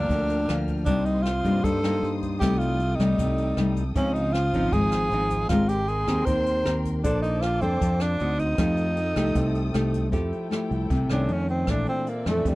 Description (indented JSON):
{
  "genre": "bossa nova",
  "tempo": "155 BPM",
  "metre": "4/4",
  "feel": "straight",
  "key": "unclear",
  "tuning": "A4 = 440 Hz",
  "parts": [
    { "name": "breathy tenor saxophone", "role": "melody", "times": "0.0-12.6 s", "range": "G3 to C5", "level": "-27 LUFS", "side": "right 1 dB", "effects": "none" },
    { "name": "nylon-string guitar", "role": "accompaniment", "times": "0.0-12.6 s", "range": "F2 to C5", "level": "-26 LUFS", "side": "left 1 dB", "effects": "none" },
    { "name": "muted studio string section", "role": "sustained chords", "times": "0.0-12.6 s", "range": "C4 to F6", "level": "-38 LUFS", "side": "equal", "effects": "none" },
    { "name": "fingered electric bass", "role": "bass", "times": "0.0-12.6 s", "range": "Ab1 to G2", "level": "-27 LUFS", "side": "equal", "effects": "none" },
    { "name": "jazz brush drum kit", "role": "drums", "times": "0.1-12.5 s", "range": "hi-hat, kick drum, rim click", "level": "-32 LUFS", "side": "equal", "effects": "none" }
  ],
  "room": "little or no reverb",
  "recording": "none",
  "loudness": "-22 LUFS",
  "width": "side -19 dB against mid",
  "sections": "0.0-10.1 A section; 10.1-12.6 B section",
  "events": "tenor saxophone solo 10.1-12.6",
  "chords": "0.0 Gm7; 0.9 Cm7; 2.4 F9/C; 4.0 Dbmaj9; 5.5 Abmaj9; 7.0 Bbmaj9; 8.2 D7b9; 8.6 F9; 10.1 Fmaj9; 11.3 F7b13; 11.7 Bbmaj9#11"
}